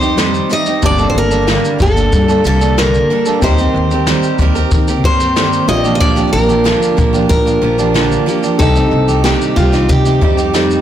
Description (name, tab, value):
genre	acoustic pop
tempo	93 BPM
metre	4/4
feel	straight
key	G minor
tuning	A4 = 439 Hz
part	picked steel-string acoustic guitar	melody	0.0-10.8 s	F4 to Eb5	-16 LUFS	left 1 dB	digital delay
part	dark upright piano	accompaniment	0.0-10.8 s	Bb3 to A5	-24 LUFS	left 3 dB	none
part	picked steel-string acoustic guitar	accompaniment	0.0-10.8 s	G2 to Bb4	-16 LUFS	right 5 dB	none
part	ethereal airy pad	sustained chords	0.0-10.8 s	D3 to G4	-23 LUFS	left 1 dB	ensemble chorus, built-in reverb
part	upright bass	bass	0.0-10.8 s	G1 to Eb3	-16 LUFS	left 1 dB	transformer saturation
part	jazz brush drum kit	drums	0.0-10.8 s	kick drum, shaker, snare drum	-16 LUFS	left 1 dB	none
room	light reverb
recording	blown-out, overdriven recording, overdrive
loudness	-10 LUFS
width	side -10 dB against mid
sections	0.0-10.8 A section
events	none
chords	0.0 Cm; 0.8 Gmadd9; 3.4 Eb6; 5.7 Bb6; 8.6 Cm